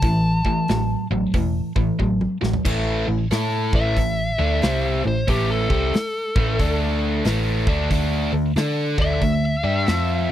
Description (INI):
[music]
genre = blues rock power trio and southern rock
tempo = 91 BPM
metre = 4/4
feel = swing 64% on 8ths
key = unclear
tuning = A4 = 442 Hz
[part]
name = fuzz lead guitar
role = melody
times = 0.0-10.3 s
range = G4 to A5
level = -25 LUFS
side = left 1 dB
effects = distortion
[part]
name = biting overdriven guitar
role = riff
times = 0.0-10.3 s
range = A2 to D5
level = -22 LUFS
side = equal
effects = none
[part]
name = vintage muted picked electric bass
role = bass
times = 0.0-10.3 s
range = E1 to D3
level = -23 LUFS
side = equal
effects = none
[part]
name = big rock drum kit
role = drums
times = 0.0-10.1 s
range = crash cymbal, hi-hat, kick drum, snare drum, toms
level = -24 LUFS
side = equal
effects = none
[sound]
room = little or no reverb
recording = dry, close 1970s-style studio recording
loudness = -18 LUFS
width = side -11 dB against mid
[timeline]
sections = 0.0-2.6 A section; 2.6-10.3 B section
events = drum fill 2.0-2.6; lead electric guitar solo 2.6-10.3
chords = 0.0 A5; 6.6 D5; 7.2 A5; 7.9 D5